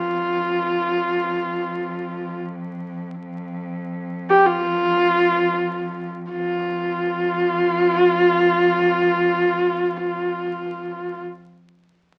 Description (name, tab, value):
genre	mongolian traditional, Mongolian folk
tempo	free time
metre	none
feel	none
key	unclear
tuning	A4 = 440 Hz
part	rich horsehead fiddle	melody	0.0-11.2 s	F4 to G4	-21 LUFS	equal	none
part	rich cello	drone	0.0-11.2 s	F2	-34 LUFS	equal	none
room	moderate studio reverb, RT60 0.7 s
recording	very old 78 rpm record, vinyl crackle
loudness	-21 LUFS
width	mono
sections	0.0-6.3 A section; 6.3-10.5 B section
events	slowing down 0.0-6.3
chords	none